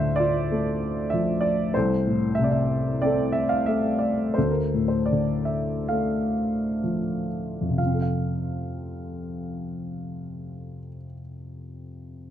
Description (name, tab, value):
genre	classical, lyrical solo piano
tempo	62-97 BPM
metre	4/4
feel	rubato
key	F major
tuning	A4 = 441 Hz
part	warm baby grand piano	solo	0.0-12.3 s	C2 to F5	-23 LUFS	equal	none
room	moderate recital hall reverb, RT60 1.3 s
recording	close, detailed microphones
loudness	-22 LUFS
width	side -10 dB against mid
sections	0.0-7.8 A section; 7.8-11.5 B section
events	slowing down 1.7-7.8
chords	0.0 Dm7; 1.7 C69; 4.4 Dm9; 7.8 F